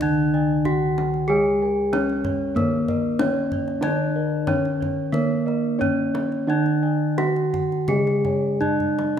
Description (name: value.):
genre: Javanese gamelan.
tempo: 80-94 BPM.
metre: 4/4.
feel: straight.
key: C# pelog barang.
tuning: A4 = 439 Hz.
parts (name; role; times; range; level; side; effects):
gamelan-type bronze metallophone; melody; 0.0-9.2 s; A#3+20c to G#4-40c; -23 LUFS; right 1 dB; none.
gamelan-type bronze metallophone; accompaniment; 0.0-9.2 s; D3+50c to A#3+20c; -25 LUFS; left 1 dB; none.
gamelan-type bossed gongs; arpeggios; 0.0-9.0 s; A#4+20c to G#5-40c; -31 LUFS; left 3 dB; none.
gamelan-type bronze metallophone; arpeggios; 0.0-9.2 s; A#4+20c to G#5-40c; -32 LUFS; right 2 dB; none.
gamelan-type bossed gongs; bass; 0.0-9.2 s; C#2 to G#4-40c; -29 LUFS; right 2 dB; none.
kendang; percussion; 0.0-9.2 s; none; -31 LUFS; left 1 dB; none.
room: moderate scoring stage reverb, RT60 1.9 s.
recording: minimal, uncompressed stereo recording.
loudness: -20 LUFS.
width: side -8 dB against mid.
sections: 0.0-9.2 A section.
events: drum fill 8.6-9.2.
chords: none.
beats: 0.02 0.66 | 1.29 1.93 2.56 3.20 | 3.83 4.47 5.13 5.80 | 6.48 7.17 7.88 8.61.